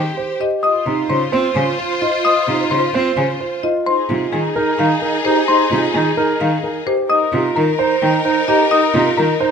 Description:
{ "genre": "classical, minimalist pattern music", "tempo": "260 BPM (eighths)", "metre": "7/8", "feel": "straight", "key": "Db lydian", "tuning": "A4 = 440 Hz", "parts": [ { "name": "marimba with medium hard mallets", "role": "melody", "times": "0.0-9.5 s", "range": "Ab4 to Ab5", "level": "-21 LUFS", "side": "left 7 dB", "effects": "none" }, { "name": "warm clarinet", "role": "second line", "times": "0.0-9.5 s", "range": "Eb4 to G4", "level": "-21 LUFS", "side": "right 6 dB", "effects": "none" }, { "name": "rich cello", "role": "accompaniment", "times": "0.0-9.3 s", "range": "C3 to C4", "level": "-22 LUFS", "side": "equal", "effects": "none" }, { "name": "clear studio string section", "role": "sustained chords", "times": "0.0-9.5 s", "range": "Eb4 to C5", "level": "-22 LUFS", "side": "left 3 dB", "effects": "none" }, { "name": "dark grand piano", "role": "arpeggios", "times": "0.2-9.5 s", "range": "Eb4 to C5", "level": "-21 LUFS", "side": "right 5 dB", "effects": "none" }, { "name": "small celesta", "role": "arpeggios", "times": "0.6-9.5 s", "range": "Ab5 to Eb6", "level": "-20 LUFS", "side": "left 3 dB", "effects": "none" } ], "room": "moderate large studio reverb, RT60 1.1 s", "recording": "none", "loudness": "-14 LUFS", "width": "side -6 dB against mid", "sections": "0.0-9.5 A section", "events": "none", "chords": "0.0 Abmaj7 (rootless); 0.6 Dbmaj7; 3.9 Fm9; 7.1 Cm7" }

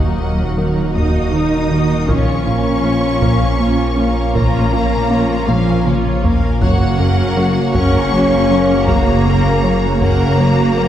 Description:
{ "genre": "cinematic, hybrid orchestral and electronic film score", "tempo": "53 BPM (dotted quarters)", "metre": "6/8", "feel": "straight", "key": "unclear", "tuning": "A4 = 439 Hz", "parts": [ { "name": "warm symphonic violin section", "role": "melody", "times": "0.0-10.9 s", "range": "F5 to Eb6", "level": "-25 LUFS", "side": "left 3 dB", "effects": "none" }, { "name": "warm symphonic violin section", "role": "second line", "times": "0.0-10.9 s", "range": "Eb4 to Gb5", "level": "-27 LUFS", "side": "left 3 dB", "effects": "none" }, { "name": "rich symphonic viola section", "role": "accompaniment", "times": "0.0-10.9 s", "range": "Gb3 to Bb4", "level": "-23 LUFS", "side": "right 1 dB", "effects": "none" }, { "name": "clear trombone section", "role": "sustained chords", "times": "0.0-10.9 s", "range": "Db3 to Bb3", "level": "-25 LUFS", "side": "right 1 dB", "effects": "none" }, { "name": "dark French horn section", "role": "sustained chords", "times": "0.0-10.9 s", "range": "F3 to Eb4", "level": "-22 LUFS", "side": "left 3 dB", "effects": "none" }, { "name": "phased analog pad", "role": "sustained chords", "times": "0.0-10.9 s", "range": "Bb3 to Db5", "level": "-25 LUFS", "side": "right 2 dB", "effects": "none" }, { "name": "tight sequenced synth", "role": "arpeggios", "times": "0.0-10.2 s", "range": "Eb3 to F4", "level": "-28 LUFS", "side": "left 1 dB", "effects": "none" }, { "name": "rubbery square bass", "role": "riff", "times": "0.0-10.9 s", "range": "Eb2 to Bb3", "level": "-20 LUFS", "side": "right 1 dB", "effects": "none" }, { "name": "dark detuned saw bass", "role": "bass", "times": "0.0-10.9 s", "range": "Eb1 to Bb1", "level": "-22 LUFS", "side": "equal", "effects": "none" }, { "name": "rich studio double bass section", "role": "bass", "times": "0.0-10.9 s", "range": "Gb1 to Eb2", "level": "-21 LUFS", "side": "right 1 dB", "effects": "none" }, { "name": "warm symphonic cello section", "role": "bass", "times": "0.0-10.9 s", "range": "F3 to Eb4", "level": "-22 LUFS", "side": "right 2 dB", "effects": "none" }, { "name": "taiko ensemble", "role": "drums", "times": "1.0-10.7 s", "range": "none", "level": "-22 LUFS", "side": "left 1 dB", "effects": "none" } ], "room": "wet scoring stage reverb, RT60 1.6 s", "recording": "heard from further back in the room", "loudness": "-12 LUFS", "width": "side -10 dB against mid", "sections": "0.0-10.9 A section", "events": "drum fill 5.5-6.6", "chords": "0.0 Ebm; 2.1 Bbm; 6.6 Gb" }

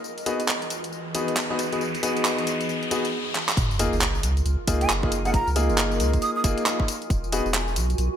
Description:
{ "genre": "UK garage, two-step garage", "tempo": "136 BPM", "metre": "4/4", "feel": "swing 62% on 16ths", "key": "F# major", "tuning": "A4 = 440 Hz", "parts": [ { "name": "garage drum kit", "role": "drums", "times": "0.0-8.1 s", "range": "handclaps, hi-hat, rim click, tambourine", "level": "-27 LUFS", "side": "right 1 dB", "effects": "overdrive, gated reverb" }, { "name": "riser and sub drop", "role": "sound effects", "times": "0.0-5.3 s", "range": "none", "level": "-32 LUFS", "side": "equal", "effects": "none" }, { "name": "granular cloud pad", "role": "texture", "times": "0.0-8.2 s", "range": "E3 to G#5", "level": "-34 LUFS", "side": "equal", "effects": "built-in reverb, analog chorus, sidechain pumping" }, { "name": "bright concert grand piano", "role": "stabs", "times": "0.3-7.5 s", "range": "A#3 to G#4", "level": "-27 LUFS", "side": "left 1 dB", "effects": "digital delay" }, { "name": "saturated sub bass", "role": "bass", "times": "3.6-8.1 s", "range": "E1 to C#2", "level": "-25 LUFS", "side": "equal", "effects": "sidechain pumping" }, { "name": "electronic kick drum", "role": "drums", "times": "3.6-7.2 s", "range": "none", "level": "-25 LUFS", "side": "equal", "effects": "none" }, { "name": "breathy jazz flute", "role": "melody", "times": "4.8-6.4 s", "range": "F#5 to D#6", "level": "-29 LUFS", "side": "right 2 dB", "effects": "digital delay" } ], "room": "moderate plate reverb, RT60 2.1 s", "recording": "bright 1980s-style digital production", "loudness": "-22 LUFS", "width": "side -9 dB against mid", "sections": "0.0-3.6 A section; 3.6-8.2 B section", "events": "build-up 0.0-3.6; riser 0.0-3.6; drum fill 3.4; drop 3.6-8.2; impact 3.6-5.3", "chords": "0.0 Emaj9; 3.6 F#maj13; 7.1 Eadd9" }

